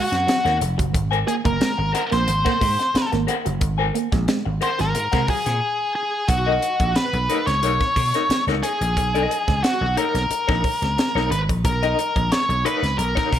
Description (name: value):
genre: funk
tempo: 90 BPM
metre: 4/4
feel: straight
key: unclear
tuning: A4 = 440 Hz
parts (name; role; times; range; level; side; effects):
- octave-fuzz lead guitar; melody; 0.0-13.4 s; Gb4 to C#5; -22 LUFS; left 1 dB; distortion, slapback echo
- electric guitar through a small old amp; riff; 0.0-5.4 s; Gb3 to Bb3; -27 LUFS; right 7 dB; tube saturation
- electric guitar through a small old amp; accompaniment; 0.1-13.4 s; D#4 to Ab5; -26 LUFS; left 4 dB; tremolo
- vintage slap bass; bass; 0.1-13.4 s; F1 to C3; -24 LUFS; right 1 dB; none
- crisp fusion drum kit; drums; 0.1-13.4 s; hi-hat, kick drum, snare drum; -24 LUFS; equal; none
room: light reverb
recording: none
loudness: -18 LUFS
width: side -10 dB against mid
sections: 0.0-6.3 A section; 6.3-13.4 B section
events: break 5.6-6.3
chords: 0.0 Ebm7; 0.9 Ab9; 6.3 Bmaj9